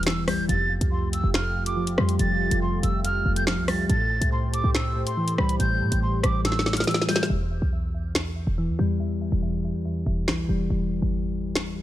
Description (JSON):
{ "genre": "hip hop, drill", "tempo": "141 BPM", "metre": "4/4", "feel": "half-time", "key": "unclear", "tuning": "A4 = 442 Hz", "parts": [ { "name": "breathy jazz flute", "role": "melody", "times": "0.0-7.3 s", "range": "B5 to A6", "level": "-29 LUFS", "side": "right 1 dB", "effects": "low-pass filter" }, { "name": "soft electric-piano-like synth keys", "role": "accompaniment", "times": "0.0-11.8 s", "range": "E2 to G3", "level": "-27 LUFS", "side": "left 1 dB", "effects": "chorus, low-pass filter" }, { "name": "dark analog pad", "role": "sustained chords", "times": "0.0-7.3 s", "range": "E3 to C5", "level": "-34 LUFS", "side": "right 1 dB", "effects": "chorus" }, { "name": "short 808-style bass", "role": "bass", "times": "0.0-11.8 s", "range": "E1 to A2", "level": "-26 LUFS", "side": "equal", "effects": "none" }, { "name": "drill drum kit", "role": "drums", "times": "0.0-11.7 s", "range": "finger snaps, hi-hat, rim click, snare drum", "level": "-26 LUFS", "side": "equal", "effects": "overdrive" } ], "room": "little or no reverb", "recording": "none", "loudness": "-22 LUFS", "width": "side -14 dB against mid", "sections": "0.0-7.3 A section; 7.3-11.8 B section", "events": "drum fill 6.4-7.3; break 7.3-11.8", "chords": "0.5 Fadd9; 3.9 Am7; 7.3 Em", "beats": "0.07 | 0.49 0.92 1.34 1.77 | 2.19 2.62 3.04 3.47 | 3.90 4.32 4.75 5.17 | 5.60 6.02 6.45 6.87 | 7.30 7.72 8.15 8.58 | 9.00 9.43 9.85 10.28 | 10.70 11.13 11.55" }